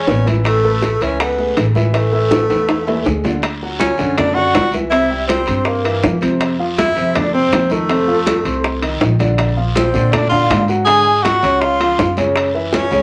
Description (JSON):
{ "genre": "Afro-Cuban jazz", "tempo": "161 BPM", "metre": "4/4", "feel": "straight", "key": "A major", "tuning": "A4 = 440 Hz", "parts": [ { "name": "bright tenor saxophone", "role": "melody", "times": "0.0-13.0 s", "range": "A3 to G#4", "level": "-20 LUFS", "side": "equal", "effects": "none" }, { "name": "breathy mellow jazz flute", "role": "second line", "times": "0.0-13.0 s", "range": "A4 to G#5", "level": "-24 LUFS", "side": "equal", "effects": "none" }, { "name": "warm upright piano", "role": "accompaniment", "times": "0.0-13.0 s", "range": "C3 to C#6", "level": "-23 LUFS", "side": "equal", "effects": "none" }, { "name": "upright bass", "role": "bass", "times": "0.0-13.0 s", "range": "A1 to Bb2", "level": "-22 LUFS", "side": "equal", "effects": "none" }, { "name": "bongos", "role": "percussion", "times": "0.1-13.0 s", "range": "none", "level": "-23 LUFS", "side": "equal", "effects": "none" }, { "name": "congas", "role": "percussion", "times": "0.1-13.0 s", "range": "none", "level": "-26 LUFS", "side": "equal", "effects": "none" }, { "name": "guiro", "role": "percussion", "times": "0.1-13.0 s", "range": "none", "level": "-33 LUFS", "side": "equal", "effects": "none" }, { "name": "timbales", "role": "percussion", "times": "0.1-12.9 s", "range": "none", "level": "-28 LUFS", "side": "equal", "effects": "none" } ], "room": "moderate small room reverb, RT60 0.5 s", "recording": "none", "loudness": "-16 LUFS", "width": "mono", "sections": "0.0-3.4 A section; 3.4-13.0 B section", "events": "drum fill 2.3-3.4", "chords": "0.5 Amaj9; 3.4 Dmaj7; 4.9 C7; 6.4 F; 7.9 F6; 9.4 Bbmaj9; 10.9 Dmaj7#11; 11.6 C#; 12.4 F#7(no3)" }